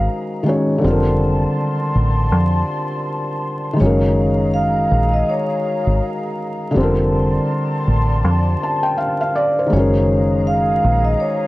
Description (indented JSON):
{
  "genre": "lo-fi hip hop",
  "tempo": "81 BPM",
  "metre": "4/4",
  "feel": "swing 58% on 16ths",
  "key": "unclear",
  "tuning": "A4 = 440 Hz",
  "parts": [
    { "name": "vibraphone with soft mallets", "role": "melody", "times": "0.0-11.5 s", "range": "Db5 to F5", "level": "-20 LUFS", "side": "equal", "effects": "plate reverb" },
    { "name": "felt-muted upright piano", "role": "accompaniment", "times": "0.0-11.5 s", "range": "D3 to A5", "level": "-18 LUFS", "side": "equal", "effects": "cassette tape" },
    { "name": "breathy large flute ensemble", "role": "sustained chords", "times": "0.0-11.5 s", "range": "Ab4 to C6", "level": "-26 LUFS", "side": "equal", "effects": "plate reverb" },
    { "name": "deep dub fingered electric bass", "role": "bass", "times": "0.0-11.1 s", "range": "F1 to F2", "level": "-18 LUFS", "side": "equal", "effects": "none" }
  ],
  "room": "moderate small room reverb, RT60 0.5 s",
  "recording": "worn, warbling old tape, cassette tape, vinyl crackle, warbly pitch drift",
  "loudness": "-15 LUFS",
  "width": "side -18 dB against mid",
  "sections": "0.0-11.5 A section",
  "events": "none",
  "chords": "0.0 Gbmaj9; 0.8 Bbmaj9/F; 3.8 Gbmaj9; 6.8 Bbmaj9/F; 9.7 Gbmaj9"
}